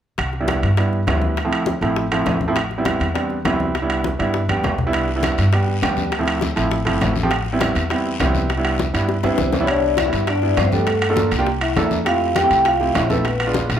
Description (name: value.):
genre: Afro-Cuban jazz.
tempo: 202 BPM.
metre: 4/4.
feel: straight.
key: C major.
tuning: A4 = 439 Hz.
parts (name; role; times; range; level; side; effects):
upright bass; bass; 0.2-13.8 s; G1 to Bb2; -23 LUFS; equal; none.
bongos; percussion; 0.2-13.7 s; none; -28 LUFS; left 6 dB; none.
congas; percussion; 0.2-13.8 s; none; -28 LUFS; left 3 dB; none.
timbales; percussion; 0.2-13.8 s; none; -25 LUFS; right 3 dB; none.
warm concert grand piano; accompaniment; 0.4-13.8 s; F3 to A4; -21 LUFS; right 2 dB; none.
guiro; percussion; 4.9-13.8 s; none; -34 LUFS; left 6 dB; none.
breathy trombone; second line; 9.2-13.7 s; A3 to G4; -25 LUFS; left 6 dB; none.
vibraphone with medium hard mallets; melody; 9.3-13.7 s; A4 to G5; -21 LUFS; equal; none.
room: light reverb.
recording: band playing live in one room.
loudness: -17 LUFS.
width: side -9 dB against mid.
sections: 0.2-9.7 A section; 9.7-13.8 B section.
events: drum fill 4.5-4.9, 9.1-9.7.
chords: 0.2 Cmaj7; 1.4 Dm7; 2.6 Am7; 3.7 Cmaj7; 6.1 Dm7; 7.3 Am7; 8.5 Cmaj9; 10.9 Gm9; 11.5 C13; 12.1 Fmaj9; 13.3 Bb7b9.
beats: | 0.18 0.48 0.78 1.07 | 1.37 1.67 1.97 2.26 | 2.56 2.86 3.15 3.45 | 3.75 4.05 4.34 4.64 | 4.94 5.23 5.53 5.83 | 6.12 6.42 6.72 7.01 | 7.31 7.61 7.90 8.20 | 8.50 8.79 9.09 9.39 | 9.69 9.98 10.28 10.58 | 10.87 11.17 11.47 11.76 | 12.06 12.36 12.66 12.95 | 13.25 13.55.